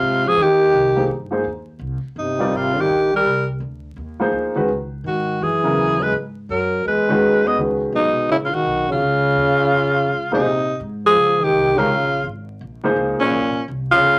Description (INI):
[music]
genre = modal jazz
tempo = 167 BPM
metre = 4/4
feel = swing 63% on 8ths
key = Bb dorian from 10.4 s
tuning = A4 = 441 Hz
[part]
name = growling alto saxophone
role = melody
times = 0.0-14.2 s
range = Db4 to Eb5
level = -20 LUFS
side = equal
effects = none
[part]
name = mellow trombone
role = second line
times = 0.0-14.2 s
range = Bb2 to Cb4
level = -24 LUFS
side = equal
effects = none
[part]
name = upright bass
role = bass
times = 0.0-14.2 s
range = G1 to Bb2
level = -34 LUFS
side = equal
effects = none
[part]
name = warm baby grand piano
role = accompaniment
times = 1.0-13.3 s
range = Db3 to D5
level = -23 LUFS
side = equal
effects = none
[sound]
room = wet club reverb, RT60 0.5 s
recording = vinyl crackle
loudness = -19 LUFS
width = mono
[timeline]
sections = 0.0-10.4 A section; 10.4-14.2 B section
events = none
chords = 0.0 Fm11; 4.7 Dbm11; 9.0 F7(no3); 10.4 Bbm11